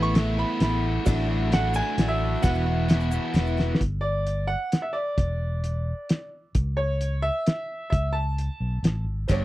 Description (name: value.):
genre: folk rock and heartland rock.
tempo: 131 BPM.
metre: 3/4.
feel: straight.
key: unclear.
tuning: A4 = 437 Hz.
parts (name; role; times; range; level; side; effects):
clear concert grand piano; melody; 0.0-9.0 s; C#5 to C#6; -29 LUFS; right 1 dB; none.
dark baby grand piano; accompaniment; 0.0-3.8 s; F#4 to E5; -39 LUFS; right 5 dB; none.
picked twelve-string acoustic guitar; accompaniment; 0.0-3.8, 9.3-9.4 s; E2 to G4; -31 LUFS; left 2 dB; none.
overdriven electric guitar; riff; 0.0-3.8, 9.3-9.4 s; E2 to F#4; -29 LUFS; right 1 dB; none.
fingered electric bass; bass; 0.0-9.4 s; E1 to C#2; -26 LUFS; equal; none.
cloth-damped thuddy drum kit; drums; 0.2-9.4 s; hi-hat, kick drum, snare drum; -22 LUFS; equal; none.
egg shaker; percussion; 1.1-3.5 s; none; -46 LUFS; left 11 dB; none.
warm upright piano; second line; 9.3-9.4 s; C5 to C#5; -28 LUFS; right 4 dB; none.
room: light reverb.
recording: dry, close 1970s-style studio recording.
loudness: -23 LUFS.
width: side -16 dB against mid.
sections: 0.0-3.8 A section; 3.8-9.4 B section.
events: drum fill 3.6.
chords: 0.0 Asus2; 1.1 Dadd9/A; 2.4 Esus2; 3.8 G5; 5.2 Dsus2/E; 6.5 C#m; 7.9 A/C#.